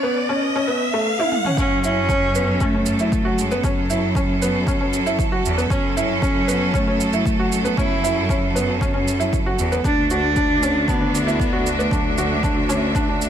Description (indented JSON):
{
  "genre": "piano and strings electronica",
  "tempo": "116 BPM",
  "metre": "4/4",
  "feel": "straight",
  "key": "F# minor",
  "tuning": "A4 = 440 Hz",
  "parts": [
    { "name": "felt-muted upright piano", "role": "riff", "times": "0.0-13.2 s", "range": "A3 to F#4", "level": "-23 LUFS", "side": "equal", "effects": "ping-pong delay" },
    { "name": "riser", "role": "sound effects", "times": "0.0-1.6 s", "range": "none", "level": "-24 LUFS", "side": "equal", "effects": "none" },
    { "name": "electronic toms and shaker", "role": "drums", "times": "1.2-13.3 s", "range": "none", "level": "-30 LUFS", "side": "right 3 dB", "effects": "overdrive" },
    { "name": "rich cello", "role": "melody", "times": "1.6-12.4 s", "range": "F#3 to E4", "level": "-23 LUFS", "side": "right 1 dB", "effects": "ping-pong delay" },
    { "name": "clear studio string section", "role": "sustained chords", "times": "1.6-13.3 s", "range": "D3 to E5", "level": "-26 LUFS", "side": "right 2 dB", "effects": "sidechain pumping" },
    { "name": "bright studio cello section", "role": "bass", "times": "1.6-13.3 s", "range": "D2 to F#2", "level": "-24 LUFS", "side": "equal", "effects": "sidechain pumping, high-pass filter" },
    { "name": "electronic kick drum", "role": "drums", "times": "1.6-13.1 s", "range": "none", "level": "-24 LUFS", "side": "equal", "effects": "overdrive" }
  ],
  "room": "light reverb",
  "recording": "none",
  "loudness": "-17 LUFS",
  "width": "side -9 dB against mid",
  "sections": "0.0-1.6 A section; 1.6-13.3 B section",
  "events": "break 0.0-1.6; build-up 0.0-1.6; riser 0.0-1.6; drum fill 1.2-1.6; drop 1.6-13.3",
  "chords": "0.0 E5; 1.6 F#m7; 9.8 Dadd9"
}